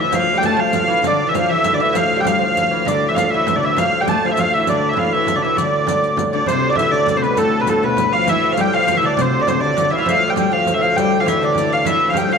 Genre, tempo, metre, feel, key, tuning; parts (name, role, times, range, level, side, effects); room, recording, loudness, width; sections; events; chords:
medieval dance; 133 BPM (dotted quarters); 6/8; straight; D dorian; A4 = 439 Hz
warm hurdy-gurdy; melody; 0.0-12.4 s; A4 to A5; -17 LUFS; equal
lute; second line; 0.0-12.4 s; A2 to A3; -24 LUFS; right 8 dB
warm viola da gamba; second line; 0.0-12.4 s; A2 to A3; -23 LUFS; left 8 dB
hand-pumped harmonium; drone; 0.0-12.4 s; D2 to A2; -24 LUFS; left 2 dB
frame drum; percussion; 0.1-12.3 s; -27 LUFS; right 9 dB
riq; percussion; 0.1-12.4 s; -30 LUFS; left 10 dB
wet echo chamber reverb, RT60 1.8 s, studio reverb; 1960s-style stereo with parts hard left and right; -14 LUFS; side -6 dB against mid
0.0-6.5 A section; 6.5-12.4 B section